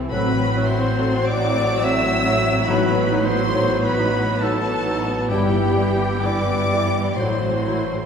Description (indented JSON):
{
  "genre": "classical",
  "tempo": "61-71 BPM",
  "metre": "3/4",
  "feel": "rubato",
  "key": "unclear",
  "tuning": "A4 = 439 Hz",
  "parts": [
    { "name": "mellow clarinet", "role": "second line", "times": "0.0-7.8 s", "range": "C4 to E4", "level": "-31 LUFS", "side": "right 1 dB", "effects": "none" },
    { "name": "warm chamber violin section", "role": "second line", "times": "0.0-8.1 s", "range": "G3 to G4", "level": "-29 LUFS", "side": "left 4 dB", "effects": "none" },
    { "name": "clear studio viola section", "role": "accompaniment", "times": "0.0-8.1 s", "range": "E3 to C4", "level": "-26 LUFS", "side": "right 1 dB", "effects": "none" },
    { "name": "mellow bassoon", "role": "accompaniment", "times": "0.0-7.8 s", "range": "F#3 to G3", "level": "-29 LUFS", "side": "right 1 dB", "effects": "none" },
    { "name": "concert harp", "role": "arpeggios", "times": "0.0-8.1 s", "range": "G2 to A5", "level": "-27 LUFS", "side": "left 5 dB", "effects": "none" },
    { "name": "rich chamber double bass section", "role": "bass", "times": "0.0-8.1 s", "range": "G1 to C2", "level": "-26 LUFS", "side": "right 1 dB", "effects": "none" },
    { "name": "warm chamber cello section", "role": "bass", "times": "0.0-8.1 s", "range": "G2 to C3", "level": "-28 LUFS", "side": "right 3 dB", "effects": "none" },
    { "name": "rich chamber violin section", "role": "melody", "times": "0.1-8.1 s", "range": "G5 to E6", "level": "-28 LUFS", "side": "left 2 dB", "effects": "none" },
    { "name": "clear oboe", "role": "second line", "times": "0.1-8.1 s", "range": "G4 to E5", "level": "-31 LUFS", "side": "right 1 dB", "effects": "none" },
    { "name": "small flute group", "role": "second line", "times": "0.1-8.1 s", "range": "G4 to E5", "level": "-25 LUFS", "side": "equal", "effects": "none" },
    { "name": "dark French horn section", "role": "sustained chords", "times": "0.1-7.5 s", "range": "F#3 to E4", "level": "-28 LUFS", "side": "left 2 dB", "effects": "none" }
  ],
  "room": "wet scoring stage reverb, RT60 1.8 s",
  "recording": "heard from further back in the room",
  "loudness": "-17 LUFS",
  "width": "side -7 dB against mid",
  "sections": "0.0-8.1 A section",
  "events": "none",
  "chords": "0.1 F#m7b5/A; 2.7 B7/A; 5.3 Em/G; 7.2 F#m7b5/A",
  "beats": "| 0.12 0.98 1.83 | 2.68 3.55 4.42 | 5.30 6.25 7.19"
}